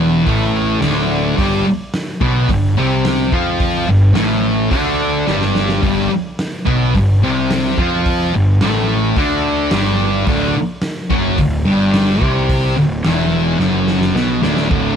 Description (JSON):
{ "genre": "garage rock duo or trio", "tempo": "108 BPM", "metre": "4/4", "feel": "straight", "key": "unclear", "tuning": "A4 = 439 Hz", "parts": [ { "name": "thick fuzz guitar", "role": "riff", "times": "0.0-14.9 s", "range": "D2 to F4", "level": "-14 LUFS", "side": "equal", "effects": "distortion" }, { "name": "fuzz picked electric bass", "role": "bass", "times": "0.0-15.0 s", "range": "D1 to F2", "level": "-22 LUFS", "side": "equal", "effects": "overdrive" }, { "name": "raw garage drum kit", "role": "drums", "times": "0.3-14.8 s", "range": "hi-hat, kick drum, snare drum, toms", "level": "-21 LUFS", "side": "equal", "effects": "none" } ], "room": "light reverb, small room ambience", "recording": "none", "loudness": "-13 LUFS", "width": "side -8 dB against mid", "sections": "0.0-14.7 A section", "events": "drum fill 5.3-5.8, 13.6-14.7", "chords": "0.0 D5; 1.4 G5; 10.3 D" }